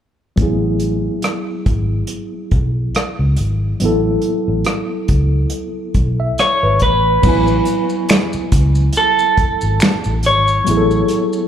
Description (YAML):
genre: R&B, neo-soul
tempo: 70 BPM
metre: 4/4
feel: swing 55% on 16ths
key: A major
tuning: A4 = 440 Hz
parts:
  - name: tine electric piano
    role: accompaniment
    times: 0.4-11.5 s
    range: F#3 to G#5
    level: -20 LUFS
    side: equal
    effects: medium stereo tremolo, low-pass filter
  - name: vintage muted fingered electric bass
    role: bass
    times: 0.4-11.0 s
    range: G#1 to C#2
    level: -17 LUFS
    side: equal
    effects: none
  - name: unplugged drum kit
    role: drums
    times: 0.4-11.3 s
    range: crash cymbal, finger snaps, hi-hat, kick drum, rim click, snare drum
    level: -18 LUFS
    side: equal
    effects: none
  - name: electric guitar through a small old amp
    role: melody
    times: 6.4-11.5 s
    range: A4 to C#5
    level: -16 LUFS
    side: right 1 dB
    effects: slapback echo
  - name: maracas and finger snaps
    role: percussion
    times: 7.2-11.5 s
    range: none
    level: -32 LUFS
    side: left 2 dB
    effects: none
room: studio reverb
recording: live gig heard through the venue's PA, club reverb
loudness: -13 LUFS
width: side -9 dB against mid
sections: 0.4-7.2 A section; 7.2-11.5 B section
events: filter sweep on tine electric piano 0.4-7.2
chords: 0.4 Amaj9; 6.8 Asus2; 7.2 Amaj9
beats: | 0.37 1.23 2.09 2.95 | 3.80 4.66 5.52 6.37 | 7.23 8.09 8.95 9.80 | 10.66